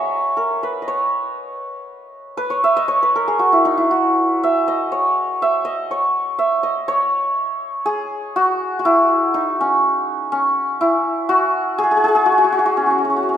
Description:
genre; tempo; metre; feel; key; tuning
indian classical; 121 BPM; 3/4; straight; C# raga bhimpalasi; A4 = 438 Hz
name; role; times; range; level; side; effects
santur; solo; 0.0-13.4 s; C#4 to C#6; -16 LUFS; equal; none
room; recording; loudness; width
moderate recital hall reverb, RT60 1.5 s; minimal, uncompressed stereo recording; -15 LUFS; side -9 dB against mid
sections
0.0-6.9 A section; 6.9-13.4 B section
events
speeding up 0.0-13.4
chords
none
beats
0.39 | 0.89 1.40 1.90 | 2.40 2.91 3.41 | 3.91 4.41 4.91 | 5.40 5.90 6.40 | 6.89 7.38 7.88 | 8.37 8.86 9.35 | 9.84 10.33 10.82 | 11.30 11.79 12.28 | 12.76 13.24

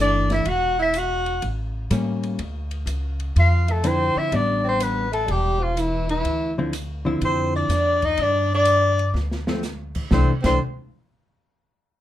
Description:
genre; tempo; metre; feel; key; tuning
jazz, small-group swing and bop; 124 BPM; 4/4; swing 68% on 8ths; C major; A4 = 436 Hz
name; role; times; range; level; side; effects
mellow soprano saxophone; melody; 0.0-10.6 s; E4 to F#5; -22 LUFS; left 1 dB; none
warm tenor saxophone; second line; 0.0-10.6 s; E3 to F#4; -27 LUFS; right 2 dB; none
hollow-body jazz guitar; accompaniment; 0.0-10.6 s; D3 to E4; -24 LUFS; left 1 dB; none
upright bass; bass; 0.0-10.6 s; E1 to A2; -24 LUFS; equal; none
open jazz drum kit; drums; 0.3-10.5 s; crash cymbal, hi-hat, kick drum, ride cymbal, snare drum; -30 LUFS; equal; none
room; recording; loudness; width
light reverb; minimal, uncompressed stereo recording; -19 LUFS; side -12 dB against mid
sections
0.0-2.4 A section; 2.4-10.1 B section; 10.1-12.0 C section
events
drum fill 9.1-9.6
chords
0.5 Esus2; 1.4 A7b9; 2.4 Dm9; 4.3 A9sus4; 6.2 Dm9; 8.2 G5; 10.1 C69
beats
| 0.46 0.94 1.42 1.91 | 2.39 2.87 3.35 3.84 | 4.32 4.80 5.28 5.76 | 6.25 6.73 7.21 7.70 | 8.18 8.66 9.14 9.63 | 10.11 10.60

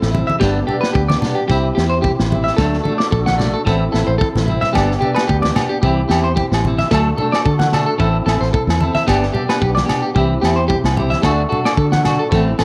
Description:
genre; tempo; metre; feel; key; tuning
highlife guitar band; 111 BPM; 4/4; swing 54% on 16ths; G major; A4 = 442 Hz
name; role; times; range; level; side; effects
tonewheel organ; sustained chords; 0.0-12.6 s; B3 to A4; -27 LUFS; equal; slow rotary speaker, overdrive, chorus vibrato
fingered electric bass; bass; 0.0-12.6 s; G1 to D3; -21 LUFS; equal; none
vintage drum kit; drums; 0.0-12.6 s; kick drum, snare drum; -24 LUFS; equal; none
clean electric guitar; accompaniment; 0.1-12.6 s; E3 to A4; -24 LUFS; equal; spring reverb
congas; percussion; 0.1-12.5 s; none; -25 LUFS; equal; none
clean electric guitar; arpeggios; 0.3-12.6 s; G4 to F#5; -23 LUFS; equal; tape echo
agogo bells; percussion; 4.8-12.6 s; none; -28 LUFS; equal; none
room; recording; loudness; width
moderate plate reverb, RT60 2.1 s; none; -16 LUFS; mono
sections
0.0-12.6 A section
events
drum fill 4.2-4.7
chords
0.4 G; 1.5 C; 2.6 D; 3.7 Am; 4.7 G; 5.8 C; 6.9 D; 8.0 Am; 9.1 G; 10.2 C; 11.2 D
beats
| 0.41 0.95 1.49 2.03 | 2.58 3.12 3.66 4.20 | 4.74 5.28 5.83 6.37 | 6.91 7.45 7.99 8.53 | 9.07 9.61 10.15 10.70 | 11.24 11.78 12.32

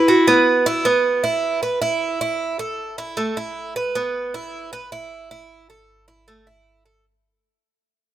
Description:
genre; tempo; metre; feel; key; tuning
latin; 155 BPM; 4/4; straight; unclear; A4 = 440 Hz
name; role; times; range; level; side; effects
bright clarinet; melody; 0.0-0.6 s; E4; -18 LUFS; left 1 dB; none
Cuban tres; arpeggios; 0.0-7.0 s; A3 to B4; -19 LUFS; right 3 dB; none
room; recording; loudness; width
light reverb, studio ambience; rough home demo mix, faint mains hum; -18 LUFS; side -12 dB against mid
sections
0.9-7.0 A section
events
fade-out 0.9-7.0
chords
0.1 Bsus4; 0.9 E5; 2.4 Esus4; 3.2 B7sus4; 4.0 E5; 5.5 Esus4; 6.3 A5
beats
0.08 0.47 | 0.86 1.24 1.63 2.02 | 2.40 2.79 3.18 3.56 | 3.95 4.34 4.72 5.11 | 5.50 5.88 6.27 6.66

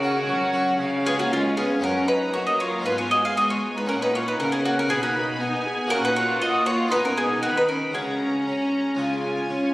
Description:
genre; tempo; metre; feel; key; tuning
classical, baroque-style concerto movement with solo episodes; 117 BPM; 4/4; straight; F# major; A4 = 440 Hz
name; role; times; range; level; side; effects
bowl-back mandolin; melody; 0.0-9.7 s; E#4 to E#5; -24 LUFS; equal; none
rich studio violin section; melody; 0.0-9.7 s; E#5 to B5; -33 LUFS; left 1 dB; none
rich chamber violin section; second line; 0.0-9.7 s; G#3 to G#4; -28 LUFS; equal; none
harpsichord; accompaniment; 0.0-9.7 s; F#2 to F#4; -31 LUFS; equal; none
rich chamber viola section; accompaniment; 0.0-9.7 s; A#3 to G#4; -29 LUFS; equal; none
clear studio cello section; bass; 0.0-9.7 s; F#2 to C#4; -29 LUFS; equal; none
room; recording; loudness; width
wet scoring stage reverb, RT60 1.7 s; recorded on a phone in the room, studio reverb; -20 LUFS; side -18 dB against mid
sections
0.0-1.8 A section; 1.8-9.7 A section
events
none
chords
0.0 F#/C#; 0.8 C#; 1.8 F#; 2.9 C#7/G#; 3.9 F#/A#; 4.9 B; 5.9 F#/A#; 6.9 G#m7/B; 8.0 C#sus4; 9.0 C#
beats
0.28 0.80 1.31 | 1.83 2.35 2.86 3.37 | 3.88 4.39 4.90 5.41 | 5.91 6.42 6.93 7.44 | 7.96 8.47 8.99 9.51

